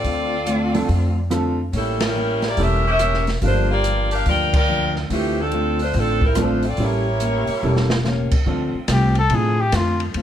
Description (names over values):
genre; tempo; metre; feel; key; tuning
jazz, big band swing; 142 BPM; 4/4; swing 65% on 8ths; D minor; A4 = 440 Hz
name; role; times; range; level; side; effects
bright saxophone section; melody; 0.0-8.1 s; E3 to G5; -22 LUFS; equal; none
picked steel-string acoustic guitar; accompaniment; 0.0-10.2 s; G2 to F4; -26 LUFS; left 3 dB; none
upright bass; bass; 0.0-10.2 s; E1 to A2; -22 LUFS; equal; none
open jazz drum kit; drums; 0.0-10.2 s; crash cymbal, hi-hat, kick drum, ride cymbal, rim click, snare drum; -25 LUFS; equal; none
clear concert grand piano; accompaniment; 0.7-9.6 s; F3 to Bb4; -25 LUFS; right 2 dB; none
warm trumpet; melody; 8.9-10.0 s; F4 to A4; -21 LUFS; left 3 dB; none
room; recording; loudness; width
moderate large studio reverb, RT60 0.9 s; none; -17 LUFS; side -10 dB against mid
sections
0.0-8.5 A section; 8.5-10.2 B section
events
band accent 1.9, 4.5; drum fill 7.6-8.1; trumpet solo 8.5-10.2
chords
0.0 Dm7; 1.7 A7b9; 3.4 Gm7; 5.1 Dm7; 6.8 A7b9; 8.5 Dm7